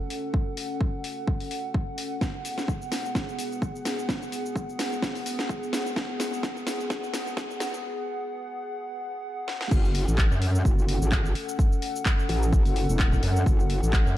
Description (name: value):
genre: bass house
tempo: 128 BPM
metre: 4/4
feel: swing 55% on 16ths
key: F# minor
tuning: A4 = 443 Hz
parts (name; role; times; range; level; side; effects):
- dark analog pad; sustained chords; 0.0-14.2 s; B3 to F#5; -32 LUFS; equal; chorus, sidechain pumping
- house drum kit; drums; 0.1-14.1 s; crash cymbal, handclaps, hi-hat, shaker, snare drum; -32 LUFS; equal; none
- electronic kick drum; drums; 0.3-14.0 s; none; -25 LUFS; equal; none
- metallic wobble bass; bass; 9.7-14.2 s; E1 to F#2; -24 LUFS; equal; chorus, tube saturation, sidechain pumping
room: light reverb, digital ambience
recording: dark, warm production, high-pass filter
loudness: -24 LUFS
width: side -14 dB against mid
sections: 0.0-9.7 A section; 9.7-14.2 B section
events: build-up 0.0-9.7; filter sweep 0.0-9.7; drum fill 2.2-7.8, 9.5; break 7.8-9.7; drop 9.7-14.2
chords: 0.0 F#m; 2.2 G#m7; 9.7 F#m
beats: | 0.34 0.81 1.28 1.74 | 2.21 2.68 3.15 3.62 | 4.09 4.56 5.03 5.49 | 5.96 6.43 6.90 7.37 | 7.84 8.31 8.78 9.24 | 9.71 10.18 10.65 11.12 | 11.59 12.06 12.53 12.99 | 13.46 13.93